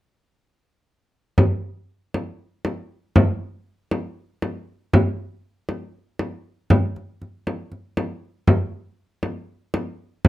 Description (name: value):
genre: contemporary instrumental, contemporary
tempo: 237 BPM (eighths)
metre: 7/8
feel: straight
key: none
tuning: none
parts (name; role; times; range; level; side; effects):
- frame drum; percussion; 1.4-10.3 s; none; -18 LUFS; equal; none
room: moderate studio reverb, RT60 0.6 s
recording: dark, warm production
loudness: -22 LUFS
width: side -16 dB against mid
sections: 1.4-10.3 A section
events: none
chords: none